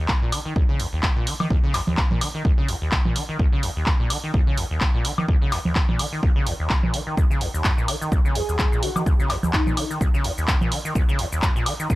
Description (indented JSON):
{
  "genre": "acid house",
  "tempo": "127 BPM",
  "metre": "4/4",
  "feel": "swing 56% on 16ths",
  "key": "Eb minor pentatonic",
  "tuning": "A4 = 441 Hz",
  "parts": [
    { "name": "acid bass, saw", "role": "riff", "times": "0.0-12.0 s", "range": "Eb2 to Eb3", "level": "-26 LUFS", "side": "equal", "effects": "overdrive, lush chorus, sidechain pumping, analog delay" },
    { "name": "electronic kick drum", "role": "drums", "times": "0.1-12.0 s", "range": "none", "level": "-21 LUFS", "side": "equal", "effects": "none" },
    { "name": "punchy analog drum machine", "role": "drums", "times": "0.1-12.0 s", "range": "congas, handclaps, hi-hat, shaker, woodblock", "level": "-26 LUFS", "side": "equal", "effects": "none" },
    { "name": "breathy flute-like synth lead", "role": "melody", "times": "8.4-9.9 s", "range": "Eb4 to Ab4", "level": "-30 LUFS", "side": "left 1 dB", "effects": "analog chorus, analog delay" }
  ],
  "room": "little or no reverb",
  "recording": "none",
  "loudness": "-19 LUFS",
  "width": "side -18 dB against mid",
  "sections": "0.0-12.0 A section",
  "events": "none",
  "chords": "0.0 Eb5"
}